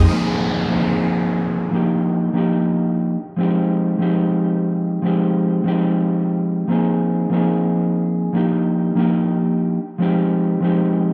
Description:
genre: future bass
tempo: 145 BPM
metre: 4/4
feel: half-time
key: F dorian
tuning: A4 = 440 Hz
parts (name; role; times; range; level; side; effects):
- mellow electric guitar; accompaniment; 0.1-11.1 s; F3 to Ab4; -19 LUFS; equal; vintage 12-bit sampler grit
- downlifter; sound effects; 0.1-3.4 s; none; -30 LUFS; equal; none
room: moderate lush hall reverb, RT60 1.6 s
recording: none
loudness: -19 LUFS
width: mono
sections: 0.1-11.1 A section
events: none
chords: 0.1 Bb9sus4; 1.7 Ebmaj9; 3.2 Fm9; 6.7 Bb9sus4; 8.3 Ebmaj9; 9.8 Fm9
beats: | 0.07 0.49 0.90 1.31 | 1.73 2.14 2.56 2.97 | 3.38 3.80 4.21 4.63 | 5.04 5.45 5.87 6.28 | 6.70 7.11 7.52 7.94 | 8.35 8.76 9.18 9.59 | 10.01 10.42 10.83

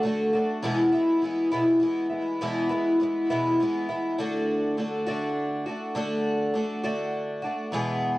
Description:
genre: rock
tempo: 68 BPM (dotted quarters)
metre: 6/8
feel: straight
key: unclear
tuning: A4 = 440 Hz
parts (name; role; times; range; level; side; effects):
- picked twelve-string acoustic guitar; solo; 0.0-8.2 s; E2 to G#4; -23 LUFS; equal; cassette tape
room: light reverb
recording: home recording on cassette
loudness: -24 LUFS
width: side -18 dB against mid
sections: 0.0-4.2 A section; 4.2-8.2 B section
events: none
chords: 0.0 D; 0.6 E; 4.2 D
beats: | 0.63 1.52 | 2.41 3.29 | 4.18 5.07 | 5.96 6.85 | 7.74

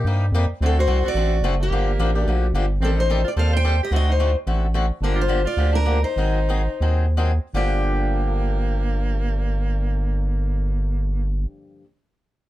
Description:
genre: acoustic string swing (jazz manouche)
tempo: 152-218 BPM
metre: 4/4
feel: swing 56% on 8ths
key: G minor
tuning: A4 = 441 Hz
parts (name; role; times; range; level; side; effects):
- picked swing-style acoustic guitar; accompaniment; 0.0-11.9 s; G2 to A4; -28 LUFS; left 3 dB; none
- round analog bass; bass; 0.0-11.5 s; F#1 to G2; -20 LUFS; equal; none
- bright soprano saxophone; second line; 0.6-11.5 s; Bb3 to C5; -30 LUFS; right 4 dB; none
- picked steel-string acoustic guitar; melody; 0.7-11.8 s; G4 to G5; -26 LUFS; left 1 dB; none
room: light reverb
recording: dark, warm production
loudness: -19 LUFS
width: side -15 dB against mid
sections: 0.0-2.8 A section; 2.8-7.5 B section; 7.5-10.7 C section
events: slowing down 5.0-7.5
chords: 0.0 Cm7; 0.6 D7; 1.7 Gm7; 2.8 Am7b5; 3.9 D7b9; 5.0 Gm7; 6.2 Ab7; 7.5 Gm7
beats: 0.06 0.34 | 0.61 0.89 1.16 1.44 | 1.72 1.99 2.27 2.54 | 2.82 3.09 3.37 3.65 | 3.92 4.20 4.47 4.75 | 5.02 5.30 5.58 5.87 | 6.17 6.49 6.82 7.17 | 7.55 7.94 8.34 8.73 | 9.13 9.52 9.91 10.31

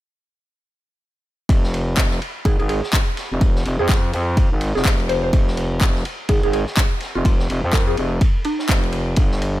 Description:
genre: bass house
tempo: 125 BPM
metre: 4/4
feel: swing 59% on 16ths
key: F minor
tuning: A4 = 436 Hz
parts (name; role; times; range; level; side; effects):
- growling FM bass; bass; 1.5-9.6 s; F1 to F2; -22 LUFS; equal; overdrive, sidechain pumping
- electronic kick drum; drums; 1.5-9.3 s; none; -17 LUFS; equal; small room ambience
- vintage drum kit; drums; 1.5-9.6 s; ride cymbal, snare drum; -31 LUFS; equal; high-pass filter on cymbals, small room ambience, high-pass filter on snare, high-pass filter on room
- electronic handclaps; drums; 2.0-8.8 s; none; -25 LUFS; left 1 dB; overdrive, small room ambience
- mallet-like synth pluck; melody; 2.5-8.8 s; Eb4 to C5; -26 LUFS; right 2 dB; lush chorus, vintage 12-bit sampler grit, dub echo
room: studio reverb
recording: none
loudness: -17 LUFS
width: side -15 dB against mid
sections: 1.5-9.6 A section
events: none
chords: none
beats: | 1.49 1.97 2.45 2.93 | 3.41 3.89 4.37 4.85 | 5.33 5.81 6.29 6.77 | 7.25 7.73 8.21 8.69 | 9.17

